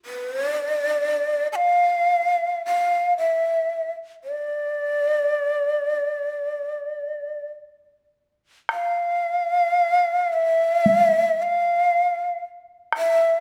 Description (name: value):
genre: japanese traditional, Japanese chamber music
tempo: 49-59 BPM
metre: 4/4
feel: rubato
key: D minor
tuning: A4 = 439 Hz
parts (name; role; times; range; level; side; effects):
- breathy long shakuhachi; melody; 0.1-13.4 s; D5 to A5; -22 LUFS; equal; none
- solo taiko drums; percussion; 8.7-13.2 s; none; -29 LUFS; equal; none
room: moderate recital hall reverb, RT60 1.4 s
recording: none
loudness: -22 LUFS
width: mono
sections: 0.0-8.7 A section; 8.7-13.4 B section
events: none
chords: none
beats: | 0.05 1.07 2.10 3.16 | 4.23 5.28 6.36 7.54 | 8.70 9.79 10.86 11.91 | 12.93